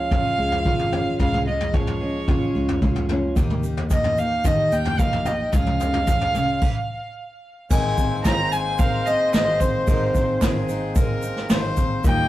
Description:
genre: indie folk with a building arrangement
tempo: 111 BPM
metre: 4/4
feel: straight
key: unclear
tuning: A4 = 439 Hz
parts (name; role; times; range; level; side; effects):
- warm fiddle; melody; 0.0-12.3 s; C5 to Bb5; -24 LUFS; equal; digital delay
- fingerpicked old ladder-braced acoustic guitar; accompaniment; 0.0-3.4 s; Db3 to F4; -27 LUFS; right 1 dB; none
- picked steel-string acoustic guitar; accompaniment; 0.0-12.3 s; Db3 to Bb4; -30 LUFS; left 1 dB; none
- fingered electric bass; bass; 0.0-12.3 s; Ab1 to Eb3; -28 LUFS; equal; none
- vintage brush drum kit; drums; 0.1-12.2 s; crash cymbal, hi-hat, kick drum, snare drum, toms; -22 LUFS; equal; none
- pedal harmonium; sustained chords; 3.4-12.3 s; Db3 to Bb4; -36 LUFS; right 1 dB; none
- egg shaker; percussion; 3.4-12.2 s; none; -41 LUFS; right 6 dB; none
- brilliant trumpet; second line; 7.7-12.3 s; Ab4 to Eb5; -31 LUFS; left 4 dB; none
- bright upright piano; accompaniment; 7.7-12.3 s; Ab1 to Eb5; -33 LUFS; left 2 dB; none
- group handclap; percussion; 8.3-11.6 s; none; -39 LUFS; right 2 dB; none
room: wet small room reverb, RT60 0.6 s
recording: rough rehearsal-room recording, warm saturation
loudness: -19 LUFS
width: side -14 dB against mid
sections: 0.0-7.7 A section; 7.7-12.3 B section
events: stop 6.6-7.7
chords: 0.0 Db; 3.4 Eb; 5.5 Db; 7.7 Abadd9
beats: 0.11 0.66 | 1.20 1.74 2.28 2.82 | 3.37 3.91 4.45 4.99 | 5.54 6.08 6.62 7.16 | 7.70 8.25 8.79 9.33 | 9.88 10.42 10.96 11.50 | 12.05

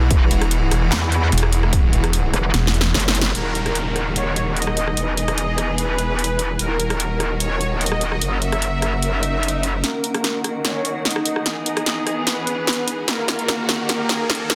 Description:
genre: heavy wobble dubstep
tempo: 148 BPM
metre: 4/4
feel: half-time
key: Eb phrygian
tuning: A4 = 438 Hz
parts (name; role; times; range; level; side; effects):
- clear studio string section; sustained chords; 0.0-14.6 s; Db3 to G#4; -31 LUFS; equal; sidechain pumping, low-pass filter
- snarling distorted saw bass; bass; 0.0-2.9 s; E1; -20 LUFS; equal; distortion, overdrive
- granular cloud pad; texture; 0.0-14.6 s; Db4 to B5; -34 LUFS; equal; built-in reverb, sidechain pumping
- metallic wobble bass; bass; 0.1-9.8 s; Eb1 to E2; -24 LUFS; equal; chorus, overdrive
- big-room dance drum kit; drums; 0.1-14.6 s; handclaps, hi-hat, rim click, snare drum; -25 LUFS; equal; soft clipping on snare, high-pass filter on snare, studio reverb, high-pass filter on hats
- electronic kick drum; drums; 0.1-1.8 s; none; -19 LUFS; equal; studio reverb
- soft supersaw; melody; 3.3-14.6 s; Bb3 to Fb5; -27 LUFS; equal; low-pass filter, tape echo
- downlifter, swell and riser; sound effects; 3.3-6.6, 9.2-14.6 s; none; -33 LUFS; equal; none
room: light reverb, digital ambience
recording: dense, heavily limited modern master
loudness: -20 LUFS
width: mono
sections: 0.0-3.3 A section; 3.3-9.8 B section; 9.8-14.6 C section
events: drop 0.0-3.3; kick drops out 2.5-3.3; drum fill 2.5-3.3, 9.8-14.6; band accent 3.2; swell 9.2-9.8; build-up 9.8-14.6; filter sweep on string section 9.8-14.6; filter sweep on supersaw synth 9.8-14.6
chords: 0.0 Eadd9; 3.3 Ebm; 5.0 E; 6.6 Ebm; 8.2 Gb; 9.8 Ebm; 11.5 E; 13.1 Ebm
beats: | 0.11 0.51 0.92 1.32 | 1.73 2.13 2.54 2.94 | 3.35 3.75 4.16 4.57 | 4.97 5.38 5.78 6.19 | 6.59 7.00 7.40 7.81 | 8.21 8.62 9.03 9.43 | 9.84 10.24 10.65 11.05 | 11.46 11.86 12.27 12.67 | 13.08 13.48 13.89 14.29

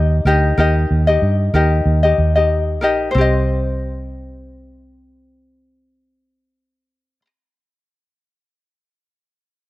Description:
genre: pop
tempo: 93 BPM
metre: 4/4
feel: swing 55% on 16ths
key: C minor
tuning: A4 = 439 Hz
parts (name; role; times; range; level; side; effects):
- ukulele; accompaniment; 0.0-7.3 s; C4 to Eb5; -17 LUFS; left 3 dB; none
- vintage muted fingered electric bass; bass; 0.0-7.2 s; Bb1 to G2; -16 LUFS; right 1 dB; none
room: light reverb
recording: none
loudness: -13 LUFS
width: side -17 dB against mid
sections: 0.0-3.2 A section; 3.2-5.7 B section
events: none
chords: 0.0 Eb; 3.2 Cm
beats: | 0.57 1.22 1.86 2.51 | 3.15 3.80 4.44 5.09

